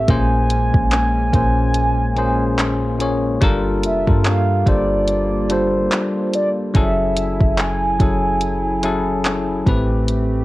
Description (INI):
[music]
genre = contemporary R&B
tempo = 72 BPM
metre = 4/4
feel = swing 58% on 16ths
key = unclear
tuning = A4 = 439 Hz
[part]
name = mellow horn-like synth lead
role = melody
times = 0.0-9.7 s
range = C5 to Ab5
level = -22 LUFS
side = right 1 dB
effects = chorus, cassette tape, tape echo
[part]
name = bell-like tine electric piano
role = accompaniment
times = 0.0-10.4 s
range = A2 to Db5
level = -20 LUFS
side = left 2 dB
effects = cassette tape
[part]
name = hollow soft pad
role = sustained chords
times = 0.0-10.4 s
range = F#3 to G#5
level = -28 LUFS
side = right 2 dB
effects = chorus, cassette tape
[part]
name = soft 808-style bass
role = bass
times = 0.0-10.4 s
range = F1 to G2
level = -22 LUFS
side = equal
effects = none
[part]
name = smooth R&B drum kit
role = drums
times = 0.1-10.3 s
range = handclaps, hi-hat, kick drum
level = -18 LUFS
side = equal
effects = cassette tape
[sound]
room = digital ambience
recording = home recording on cassette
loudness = -15 LUFS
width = side -17 dB against mid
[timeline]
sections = 0.0-10.4 A section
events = none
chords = 0.1 Bbm9; 3.4 Gm9; 6.7 F#m9; 9.7 Am9